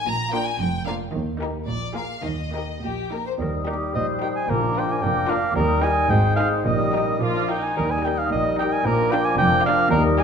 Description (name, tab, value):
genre	quick classical-period movement for symphony orchestra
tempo	102-115 BPM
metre	2/4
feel	rubato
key	Eb major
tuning	A4 = 439 Hz
part	rich chamber violin section	melody	0.0-10.2 s	Bb4 to Bb5	-32 LUFS	left 4 dB	none
part	rich chamber double bass section	bass	0.1-10.2 s	F1 to Eb2	-28 LUFS	right 2 dB	none
part	rich studio cello section	bass	0.1-10.2 s	Eb2 to Eb3	-28 LUFS	right 2 dB	none
part	rich chamber violin section	second line	0.3-10.2 s	F4 to C5	-34 LUFS	left 5 dB	none
part	rich chamber viola section	accompaniment	0.3-10.2 s	Bb3 to F4	-33 LUFS	equal	none
part	mellow hollow large flute ensemble	second line	3.4-10.2 s	D6 to Eb6	-29 LUFS	equal	none
part	warm clarinet	second line	3.4-10.2 s	G4 to C5	-30 LUFS	left 6 dB	none
part	warm bassoon	accompaniment	3.4-10.2 s	F3 to Bb3	-30 LUFS	right 2 dB	none
part	mellow French horn section	sustained chords	3.4-10.2 s	F3 to Eb4	-29 LUFS	left 5 dB	none
part	warm cor anglais	second line	4.0-10.2 s	Bb4 to Ab5	-23 LUFS	right 1 dB	none
part	timpani	percussion	4.5-7.2 s	Bb2	-33 LUFS	equal	none
room	wet scoring stage reverb, RT60 1.9 s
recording	minimal, uncompressed stereo recording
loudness	-20 LUFS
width	side -6 dB against mid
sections	0.0-3.4 A section; 3.4-10.2 B section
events	none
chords	0.1 Bb; 1.1 Eb; 1.7 Bb7; 2.2 Eb; 4.5 Bb; 5.6 Eb; 6.1 Ab; 6.7 Eb/Bb; 7.2 Bb; 7.8 Eb; 8.9 Bb